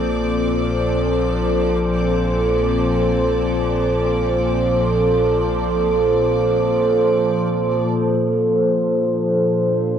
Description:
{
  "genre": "ambient",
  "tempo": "free time",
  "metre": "none",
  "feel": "none",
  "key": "Bb major",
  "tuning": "A4 = 440 Hz",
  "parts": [
    { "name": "evolving wavetable pad", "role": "sustained chords", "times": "0.0-10.0 s", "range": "Bb2 to C5", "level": "-17 LUFS", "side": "equal", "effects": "chorus, built-in reverb, cassette tape" },
    { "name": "round analog bass", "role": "bass", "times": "0.0-7.8 s", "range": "Bb1", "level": "-25 LUFS", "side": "left 1 dB", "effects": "none" },
    { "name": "rich studio violin section", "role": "texture", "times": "0.0-7.9 s", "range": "D5 to D6", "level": "-30 LUFS", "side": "left 1 dB", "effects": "cassette tape" }
  ],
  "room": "wet spring reverb, RT60 2.5 s",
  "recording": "home recording on cassette",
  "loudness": "-16 LUFS",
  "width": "side -8 dB against mid",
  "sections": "0.0-7.9 A section; 7.9-10.0 B section",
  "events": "filter sweep on ambient pad 7.9-10.0",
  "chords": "0.0 Bbmaj7",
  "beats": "free time"
}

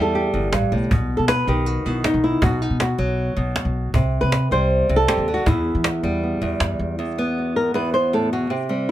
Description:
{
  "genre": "flamenco",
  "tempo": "158 BPM",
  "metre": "4/4",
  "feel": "straight",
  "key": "E harmonic minor",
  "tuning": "A4 = 440 Hz",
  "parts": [
    { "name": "flamenco guitar", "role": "melody", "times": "0.0-8.9 s", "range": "E2 to C5", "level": "-20 LUFS", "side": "equal", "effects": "plate reverb" },
    { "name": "upright bass", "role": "bass", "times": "0.0-7.0 s", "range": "G1 to E3", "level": "-23 LUFS", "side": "equal", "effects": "none" },
    { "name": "cajon", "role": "percussion", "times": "0.1-6.8 s", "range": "none", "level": "-21 LUFS", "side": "equal", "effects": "none" }
  ],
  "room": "light reverb",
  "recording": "none",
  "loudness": "-18 LUFS",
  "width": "side -13 dB against mid",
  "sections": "0.0-7.0 A section; 7.0-8.9 B section",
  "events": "nylon-string guitar solo 7.0-8.9",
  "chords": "0.0 Em; 0.9 B; 3.9 C5; 5.5 Em; 7.0 Esus2",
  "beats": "0.14 0.52 | 0.90 1.28 1.66 2.04 | 2.42 2.80 3.18 3.56 | 3.94 4.33 4.71 5.08 | 5.47 5.85 6.23 6.61 | 6.99 7.37 7.75 8.13 | 8.51 8.89"
}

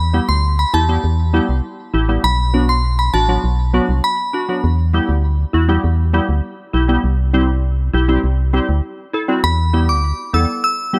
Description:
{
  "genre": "dancehall",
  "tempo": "100 BPM",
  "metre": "4/4",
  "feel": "straight",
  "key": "E minor",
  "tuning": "A4 = 436 Hz",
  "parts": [
    { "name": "organ-like FM bass", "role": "bass", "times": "0.0-10.5 s", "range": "A1 to E2", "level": "-18 LUFS", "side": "equal", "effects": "none" },
    { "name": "glassy wavetable pluck", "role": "accompaniment", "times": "0.1-11.0 s", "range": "F#3 to A4", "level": "-22 LUFS", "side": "equal", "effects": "chorus" },
    { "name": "glassy synth bell", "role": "melody", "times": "0.3-4.5, 9.4-11.0 s", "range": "A5 to E6", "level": "-22 LUFS", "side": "equal", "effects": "chorus, tremolo, tape echo" }
  ],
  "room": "digital ambience",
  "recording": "none",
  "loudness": "-17 LUFS",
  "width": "mono",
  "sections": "0.0-9.4 A section; 9.4-11.0 B section",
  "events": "none",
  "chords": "0.0 Em; 2.2 Bm; 4.6 Em; 7.0 C; 9.4 Em",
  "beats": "0.44 1.04 1.64 | 2.24 2.84 3.44 4.04 | 4.64 5.24 5.84 6.44 | 7.04 7.64 8.24 8.84 | 9.44 10.04 10.64"
}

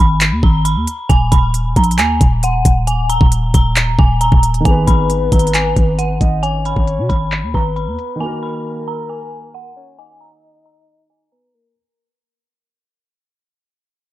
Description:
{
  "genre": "hip hop, trap",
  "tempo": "135 BPM",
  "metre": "4/4",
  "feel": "half-time",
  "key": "G# minor",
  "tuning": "A4 = 440 Hz",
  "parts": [
    { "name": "dark detuned synth bell", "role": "melody", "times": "0.0-11.7 s", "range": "F#5 to B5", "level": "-20 LUFS", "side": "right 1 dB", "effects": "chorus, phaser, low-pass filter, digital delay" },
    { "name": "growling 808-style bass", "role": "bass", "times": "0.0-8.0 s", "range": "D#1 to B2", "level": "-16 LUFS", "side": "equal", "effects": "none" },
    { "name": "trap drum kit", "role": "drums", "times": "0.2-8.1 s", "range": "handclaps, hi-hat, kick drum", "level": "-13 LUFS", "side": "equal", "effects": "none" },
    { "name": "dark baby grand piano", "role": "accompaniment", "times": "4.6-11.8 s", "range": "D#3 to B4", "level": "-24 LUFS", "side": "right 2 dB", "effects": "low-pass filter" },
    { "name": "soft octave-layered synth lead", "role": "second line", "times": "4.7-11.8 s", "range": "A#4 to D#5", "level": "-23 LUFS", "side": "left 3 dB", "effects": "chorus, digital delay" }
  ],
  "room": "digital ambience",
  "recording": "dark, warm production, low-pass filter",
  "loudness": "-12 LUFS",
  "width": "side -15 dB against mid",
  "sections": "0.0-4.7 A section; 4.7-11.8 B section",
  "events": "fade-out 4.7-11.8",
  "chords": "0.0 G#m; 1.1 D#5; 4.7 G#m; 8.2 D#m",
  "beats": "0.21 0.65 | 1.10 1.54 1.99 2.43 | 2.88 3.32 3.76 4.21 | 4.65 5.10 5.54 5.99 | 6.43 6.88 7.32 7.76 | 8.21 8.65 9.10 9.54 | 9.99 10.43 10.88 11.32"
}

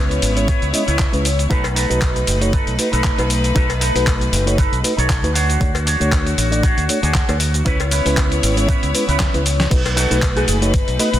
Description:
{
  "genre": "nu-disco, nu disco",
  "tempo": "117 BPM",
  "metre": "4/4",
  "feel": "swing 55% on 16ths",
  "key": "B mixolydian",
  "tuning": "A4 = 445 Hz",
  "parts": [
    { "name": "mellow reed electric piano", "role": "accompaniment", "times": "0.0-11.1 s", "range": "G#3 to D#5", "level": "-23 LUFS", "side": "equal", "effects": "fast tremolo, sidechain pumping, tape echo" },
    { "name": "bright chamber string section", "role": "sustained chords", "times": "0.0-11.2 s", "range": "A3 to C#5", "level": "-24 LUFS", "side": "left 3 dB", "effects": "sidechain pumping" },
    { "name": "electric guitar with an envelope filter", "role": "riff", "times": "0.0-10.7 s", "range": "C#4 to C#5", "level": "-25 LUFS", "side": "right 3 dB", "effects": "wide subtle chorus, tape echo" },
    { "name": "fingered electric bass with an envelope filter", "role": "bass", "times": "0.0-11.2 s", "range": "F#1 to D2", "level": "-20 LUFS", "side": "equal", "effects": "tube saturation" },
    { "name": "dusty soul sampler-style drum kit", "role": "drums", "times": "0.1-11.2 s", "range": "crash cymbal, handclaps, hi-hat, shaker, snare drum", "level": "-22 LUFS", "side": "equal", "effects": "none" },
    { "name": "electronic kick drum", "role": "drums", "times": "0.5-10.9 s", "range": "none", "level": "-18 LUFS", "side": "equal", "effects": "overdrive" },
    { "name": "cowbell", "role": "percussion", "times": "1.6-10.3 s", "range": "none", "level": "-31 LUFS", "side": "left 6 dB", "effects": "none" },
    { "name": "wide unison lead", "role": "melody", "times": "10.4-11.2 s", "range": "G#4 to B4", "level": "-24 LUFS", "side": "left 2 dB", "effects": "none" }
  ],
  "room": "light reverb",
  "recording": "dense, heavily limited modern master",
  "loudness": "-15 LUFS",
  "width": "side -12 dB against mid",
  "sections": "0.0-9.7 A section; 9.7-11.2 B section",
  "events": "drum fill 9.2-9.7; drop 9.7-11.2",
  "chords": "0.0 C#m7; 1.5 B7; 5.4 Dmaj7; 7.7 C#m7; 9.7 B7",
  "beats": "0.48 0.99 | 1.51 2.02 2.53 3.05 | 3.56 4.07 4.58 5.10 | 5.61 6.12 6.64 7.15 | 7.66 8.17 8.69 9.20 | 9.71 10.22 10.74"
}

